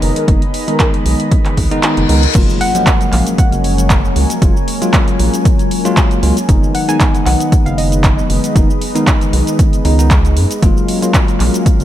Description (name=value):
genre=deep house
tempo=116 BPM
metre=4/4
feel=swing 54% on 16ths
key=F# major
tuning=A4 = 440 Hz
part: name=breathy flute-like synth lead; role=melody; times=0.0-2.4 s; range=A#4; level=-24 LUFS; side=left 1 dB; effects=ensemble chorus, digital delay
part: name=warm analog pad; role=sustained chords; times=0.0-11.8 s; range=F#3 to G#5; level=-24 LUFS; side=right 1 dB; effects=chorus, vintage 12-bit sampler grit, sidechain pumping
part: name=bell-like tine electric piano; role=stabs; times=0.0-11.8 s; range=D#3 to E#4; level=-18 LUFS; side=left 1 dB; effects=sidechain pumping, digital delay
part: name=rubbery square bass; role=bass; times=0.0-11.8 s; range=F#1 to F#2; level=-14 LUFS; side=equal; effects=sidechain pumping
part: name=deep house drum kit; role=drums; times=0.0-11.8 s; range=crash cymbal, handclaps, hi-hat, shaker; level=-20 LUFS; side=right 1 dB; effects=overdrive
part: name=deep dark ambient pad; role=texture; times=0.0-11.8 s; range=F#3 to B5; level=-24 LUFS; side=left 1 dB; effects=chorus, built-in reverb, sidechain pumping
part: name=electronic kick drum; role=drums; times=0.3-11.8 s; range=none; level=-12 LUFS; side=equal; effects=overdrive
part: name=reverse cymbal and impact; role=sound effects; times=1.8-4.4 s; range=none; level=-24 LUFS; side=left 3 dB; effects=none
part: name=soft round pluck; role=melody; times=2.6-8.3 s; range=D#5 to G#5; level=-21 LUFS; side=left 1 dB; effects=chorus, digital delay
room=little or no reverb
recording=none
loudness=-10 LUFS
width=side -12 dB against mid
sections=0.0-2.4 A section; 2.4-11.8 B section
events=filter sweep on tine electric piano 0.0-2.4; reverse cymbal 1.8-2.4; kick drops out 1.8-2.4; drop 2.4-11.8; impact 2.4-4.4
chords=0.0 G#m/F#; 2.4 F#maj9; 6.5 G#m/F#; 10.6 F#maj9